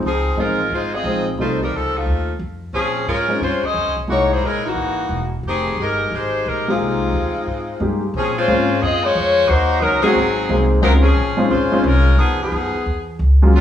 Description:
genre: jazz, big band swing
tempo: 178 BPM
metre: 4/4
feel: swing 64% on 8ths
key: F minor, Bb minor from 8.1 s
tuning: A4 = 440 Hz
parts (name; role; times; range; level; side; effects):
- warm grand piano; accompaniment; 0.0-4.6, 6.7-13.5 s; F3 to Ab4; -20 LUFS; left 1 dB; none
- upright bass; bass; 0.0-13.6 s; E1 to Bb2; -20 LUFS; equal; none
- clear saxophone section; melody; 0.1-13.6 s; Eb3 to Eb5; -18 LUFS; left 1 dB; none
room: moderate large studio reverb, RT60 1.1 s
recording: band playing live in one room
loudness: -16 LUFS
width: side -10 dB against mid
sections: 0.0-8.1 A section; 8.1-13.6 B section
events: none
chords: 0.0 Dbmaj9; 1.4 F7; 2.7 Bbm11; 4.1 C7alt; 5.4 Fm11; 8.1 Bbm9; 9.5 Ebm7; 10.2 Ab7; 10.8 Dbmaj7; 12.2 Fm7b5; 12.9 E

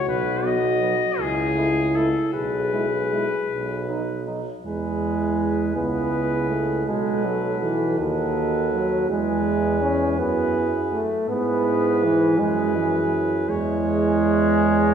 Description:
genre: classical, brass quintet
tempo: 54 BPM (dotted quarters)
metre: 6/8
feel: straight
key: E major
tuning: A4 = 439 Hz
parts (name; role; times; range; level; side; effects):
- clear trumpet; melody; 0.0-14.9 s; G#4 to D#5; -30 LUFS; left 4 dB; none
- dark French horn; accompaniment; 0.0-14.9 s; E4 to G#4; -26 LUFS; left 1 dB; none
- clear tuba; bass; 0.1-14.9 s; B1 to G#2; -27 LUFS; right 2 dB; none
- mellow flugelhorn; second line; 0.4-14.9 s; B3 to A4; -29 LUFS; right 3 dB; none
- warm trombone; accompaniment; 0.4-14.9 s; D#3 to C#4; -24 LUFS; right 2 dB; none
room: wet scoring stage reverb, RT60 1.8 s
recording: heard from further back in the room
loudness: -20 LUFS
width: side -8 dB against mid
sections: 0.0-4.7 A section; 4.7-14.9 B section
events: none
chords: 0.1 B; 1.2 A/C#; 2.3 E/B; 3.5 B; 4.7 E; 6.9 B7; 9.1 E; 11.3 E/G#; 13.5 C#m/E

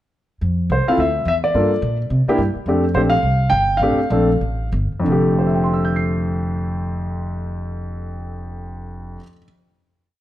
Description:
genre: jazz piano trio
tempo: 182-215 BPM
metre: 4/4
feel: swing 60% on 8ths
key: F major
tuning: A4 = 442 Hz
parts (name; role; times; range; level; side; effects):
- upright bass; bass; 0.4-9.2 s; F1 to C3; -22 LUFS; equal; none
- warm concert grand piano; melody; 0.7-9.4 s; F2 to C7; -19 LUFS; equal; none
room: moderate large studio reverb, RT60 1.4 s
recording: none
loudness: -16 LUFS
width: side -13 dB against mid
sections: 0.4-5.1 A section; 5.1-7.7 final chord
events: slowing down 2.7-5.1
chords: 0.4 F5; 1.0 Dsus2; 1.6 Gm9; 2.1 C5; 2.7 F69

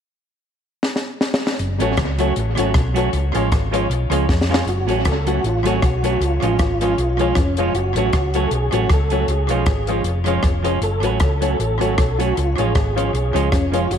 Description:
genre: ska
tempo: 156 BPM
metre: 4/4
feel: swing 55% on 8ths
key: F# harmonic minor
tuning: A4 = 440 Hz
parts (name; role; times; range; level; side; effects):
- compact cocktail drum kit; drums; 0.8-14.0 s; hi-hat, kick drum, rim click, snare drum; -22 LUFS; equal; tape echo
- hollow-body short-scale fingered electric bass; bass; 1.6-14.0 s; E#1 to E#2; -21 LUFS; equal; none
- clean electric guitar; accompaniment; 1.8-13.9 s; E#3 to F#4; -24 LUFS; right 10 dB; none
- honky-tonk upright piano; stabs; 1.8-13.9 s; C#4 to C#5; -24 LUFS; left 10 dB; tape echo
- mellow tonewheel organ; melody; 4.7-14.0 s; C#4 to B4; -24 LUFS; right 1 dB; chorus vibrato, fast rotary speaker
room: moderate echo chamber reverb, RT60 2.2 s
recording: 1960s-style stereo with parts hard left and right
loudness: -16 LUFS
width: side -8 dB against mid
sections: 0.1-1.6 A section; 1.6-4.7 B section; 4.7-14.0 C section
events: drum fill 0.8-1.6, 4.3-4.7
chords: 0.1 N.C.; 1.6 F#m; 3.1 C#; 4.7 F#m; 6.2 C#; 7.8 F#m; 9.3 C#; 10.8 F#m; 12.4 C#

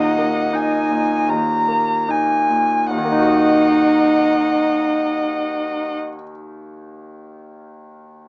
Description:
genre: classical, slow romantic movement for piano quartet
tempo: 37 BPM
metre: 3/4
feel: rubato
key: Eb minor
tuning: A4 = 436 Hz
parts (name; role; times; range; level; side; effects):
- muted violin; melody; 0.0-6.0 s; Eb5; -23 LUFS; left 1 dB; none
- muted cello; second line; 0.0-5.9 s; Eb4; -19 LUFS; right 1 dB; none
- muted violin; second line; 0.0-6.0 s; Gb5 to Bb5; -20 LUFS; equal; none
- bright concert grand piano; accompaniment; 0.0-8.3 s; Eb2 to Eb5; -22 LUFS; left 1 dB; none
room: moderate studio reverb, RT60 0.8 s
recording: small speaker sound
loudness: -15 LUFS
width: side -25 dB against mid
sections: 0.0-2.9 A section; 2.9-7.8 B section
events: slowing down 0.0-2.9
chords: 0.0 Eb5; 2.9 Ebm

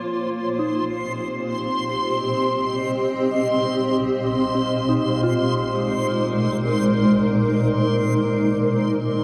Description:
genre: ambient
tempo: free time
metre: none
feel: none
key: unclear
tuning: A4 = 441 Hz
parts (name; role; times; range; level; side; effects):
- granular cloud pad; sustained chords; 0.0-9.2 s; Bb2 to Eb5; -22 LUFS; equal; built-in reverb, shimmer reverb
- soft synth bell; arpeggios; 0.0-9.1 s; C4 to F4; -31 LUFS; equal; chorus, diffuse ambient delay, shimmer reverb
- backwards swelling texture; texture; 0.0-9.2 s; C6; -31 LUFS; equal; built-in reverb, shimmer reverb
room: wet cathedral reverb, RT60 5.2 s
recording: dreamy mix soaked in reverb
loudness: -21 LUFS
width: mono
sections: 0.0-9.2 A section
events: none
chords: 0.0 Cm7/Bb; 4.5 Abmaj7/Bb

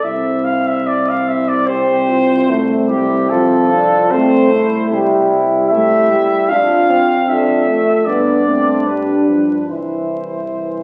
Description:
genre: classical, hymn-like piece for brass band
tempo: 74 BPM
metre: 4/4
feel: rubato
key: C major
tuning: A4 = 440 Hz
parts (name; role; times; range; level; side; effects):
- mellow cornet; melody; 0.0-10.8 s; G4 to F5; -20 LUFS; equal; none
- mellow French horn section; second line; 0.0-10.8 s; D4 to A4; -23 LUFS; equal; none
- mellow tuba; bass; 0.0-10.8 s; C2 to G2; -27 LUFS; equal; none
- dark trombone section; accompaniment; 0.1-10.8 s; A3 to E4; -20 LUFS; equal; none
- warm euphonium; accompaniment; 1.7-10.8 s; E3 to D4; -21 LUFS; equal; none
room: wet recital hall reverb, RT60 1.5 s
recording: very old 78 rpm record, vinyl crackle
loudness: -15 LUFS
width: mono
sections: 0.0-10.8 A section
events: none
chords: 0.0 C; 3.3 F/C; 4.9 C; 6.5 Dm/F; 8.1 G; 9.7 C

